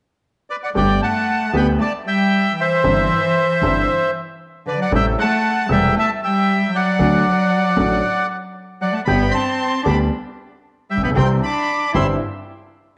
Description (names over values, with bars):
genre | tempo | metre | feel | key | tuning
tango | 115 BPM | 4/4 | rubato | G major | A4 = 442 Hz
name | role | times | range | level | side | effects
bandoneon | melody | 0.5-12.1 s | B4 to E6 | -22 LUFS | equal | slapback echo
warm cello | second line | 0.7-12.1 s | D3-20c to E4 | -24 LUFS | equal | none
warm upright piano | accompaniment | 0.7-12.2 s | E1 to G4 | -24 LUFS | equal | none
upright bass | bass | 0.8-12.2 s | E1 to D2 | -24 LUFS | equal | none
room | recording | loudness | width
wet spring reverb, RT60 1.5 s, studio reverb | nothing above 10.8 kHz | -18 LUFS | mono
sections
0.8-13.0 A section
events
none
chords
0.0 N.C.; 0.8 Gadd9; 2.8 Cadd9/G; 4.9 Am7; 7.0 D; 9.1 G; 11.2 C